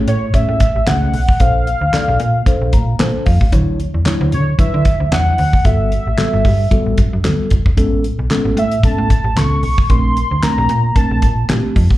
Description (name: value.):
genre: early-eighties boogie funk.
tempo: 113 BPM.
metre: 4/4.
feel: swing 56% on 16ths.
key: unclear.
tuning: A4 = 440 Hz.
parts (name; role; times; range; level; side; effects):
mellow tine electric piano; accompaniment; 0.0-11.8 s; F#3 to Bb5; -21 LUFS; left 1 dB; medium stereo tremolo, slapback echo.
slap-like FM bass; bass; 0.0-12.0 s; E1 to D3; -16 LUFS; equal; none.
warm velvety synth lead; melody; 0.1-11.5 s; C#5 to C#6; -19 LUFS; equal; chorus, slapback echo.
damped 70s drum kit; drums; 0.1-12.0 s; handclaps, hi-hat, kick drum, snare drum; -15 LUFS; equal; none.
room: little or no reverb.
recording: live gig heard through the venue's PA, club reverb.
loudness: -12 LUFS.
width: side -16 dB against mid.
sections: 0.0-12.0 A section.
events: tine electric piano fill 2.5-3.5.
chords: 0.0 Amaj9; 1.4 Bbmaj9; 3.5 Dmaj9; 5.7 Gmaj9; 7.8 Amaj9; 9.9 Bbmaj9.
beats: 0.34 0.87 | 1.40 1.94 2.47 3.00 | 3.53 4.06 4.59 5.12 | 5.65 6.18 6.71 7.24 | 7.78 8.31 8.84 9.37 | 9.90 10.43 10.96 11.49.